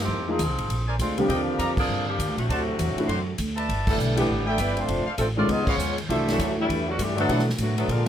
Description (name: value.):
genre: jazz, big band swing.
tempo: 200 BPM.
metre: 4/4.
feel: swing 61% on 8ths.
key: G major from 3.7 s.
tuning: A4 = 440 Hz.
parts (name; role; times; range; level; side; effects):
mellow saxophone section; melody; 0.0-8.1 s; D3 to D#5; -28 LUFS; equal; none.
upright bass; bass; 0.0-8.1 s; F1 to B2; -28 LUFS; equal; none.
warm grand piano; accompaniment; 0.3-7.5 s; D3 to Ab4; -26 LUFS; equal; none.
swinging big-band drum kit; drums; 0.4-8.0 s; crash cymbal, hi-hat, kick drum, ride cymbal, snare drum; -30 LUFS; equal; none.
warm trumpet section; stabs; 0.9-7.4 s; A4 to C6; -29 LUFS; equal; none.
clear trombone section; second line; 2.4-8.1 s; G2 to D#4; -30 LUFS; left 1 dB; none.
room: light reverb.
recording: none.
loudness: -22 LUFS.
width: side -10 dB against mid.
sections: 0.0-3.7 A section; 3.7-8.1 B section.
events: band accent 1.7, 3.8, 5.6.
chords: 0.1 Fm7; 0.7 Bb9; 1.3 Ebmaj9; 2.5 D7; 3.7 G6; 4.9 Dm7; 5.5 C#9; 6.1 C69; 7.3 Bm7.